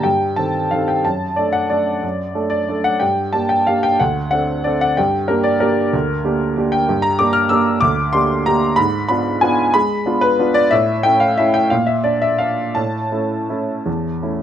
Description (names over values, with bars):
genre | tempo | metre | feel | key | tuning
classical, piano waltz | 158-198 BPM | 3/4 | rubato | G minor | A4 = 439 Hz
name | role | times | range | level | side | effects
clear upright piano | solo | 0.0-14.4 s | D2 to F6 | -15 LUFS | equal | none
room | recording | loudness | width
light reverb | close, detailed microphones | -15 LUFS | side -10 dB against mid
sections
0.0-14.4 A section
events
none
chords
0.0 Am7b5/G; 1.0 D/F#; 3.0 Gm; 4.0 D7; 5.0 Gm; 8.8 G#dim7; 10.7 A; 11.7 Bb; 12.8 A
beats
| 0.04 0.38 0.72 | 1.05 1.37 1.71 | 2.03 2.35 2.69 | 3.01 3.34 3.67 | 4.00 4.32 4.66 | 4.97 5.29 5.61 | 5.93 6.24 6.56 | 6.88 7.19 7.51 | 7.82 8.14 8.46 | 8.77 9.09 9.42 | 9.74 10.06 10.39 | 10.72 11.04 11.38 | 11.71 12.05 12.40 | 12.76 13.12 13.50 | 13.86 14.22